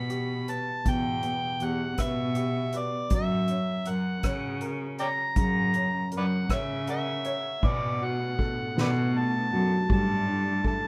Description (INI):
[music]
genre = acoustic folk-pop ballad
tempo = 53 BPM (dotted quarters)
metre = 6/8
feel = straight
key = B minor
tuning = A4 = 440 Hz
[part]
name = overdriven harmonica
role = melody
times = 0.0-10.9 s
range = B4 to B5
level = -33 LUFS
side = equal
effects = none
[part]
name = warm upright piano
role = accompaniment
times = 0.0-10.9 s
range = B2 to F#5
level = -37 LUFS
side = equal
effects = none
[part]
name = warm cello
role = bass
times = 0.0-10.8 s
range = E2 to C#3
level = -32 LUFS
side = equal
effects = none
[part]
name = soft-mallet drum kit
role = drums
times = 0.1-10.8 s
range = crash cymbal, hi-hat, kick drum, ride cymbal, rim click, snare drum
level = -33 LUFS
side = equal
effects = none
[part]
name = phased analog pad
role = sustained chords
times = 8.3-10.9 s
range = G3 to D4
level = -39 LUFS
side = equal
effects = none
[sound]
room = moderate studio reverb, RT60 0.8 s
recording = none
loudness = -28 LUFS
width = mono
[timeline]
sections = 0.0-7.6 A section; 7.6-10.9 B section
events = none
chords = 0.0 Em; 3.1 F#7; 7.6 Bm7; 9.9 Gsus2